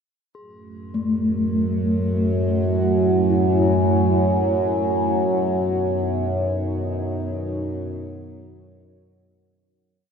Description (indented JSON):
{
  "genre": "dark ambient drone",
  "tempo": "free time",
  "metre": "none",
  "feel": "none",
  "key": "F# dorian",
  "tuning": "A4 = 440 Hz",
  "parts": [
    { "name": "bronze singing bowl", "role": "texture", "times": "0.3-9.8 s", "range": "G#4", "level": "-46 LUFS", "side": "left 3 dB", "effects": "none" },
    { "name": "dark analog pad", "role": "sustained chords", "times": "1.1-9.8 s", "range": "A3 to C#5", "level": "-26 LUFS", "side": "equal", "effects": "chorus, phaser" },
    { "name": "overtone-sweeping drone", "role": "drone", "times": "1.0-9.9 s", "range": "F#2 to F#3", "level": "-21 LUFS", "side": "equal", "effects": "chorus, built-in reverb" },
    { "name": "gamelan-type bronze metallophone", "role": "arpeggios", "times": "0.9-8.0 s", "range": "A3 to E4", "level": "-26 LUFS", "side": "left 2 dB", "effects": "tape echo" }
  ],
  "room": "wet cathedral reverb, RT60 6.3 s",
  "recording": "in a vast, echoing space",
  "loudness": "-19 LUFS",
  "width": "side -6 dB against mid",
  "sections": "0.4-9.8 A section",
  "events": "fade-out 5.1-9.8",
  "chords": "0.4 F#m7; 5.1 Badd9"
}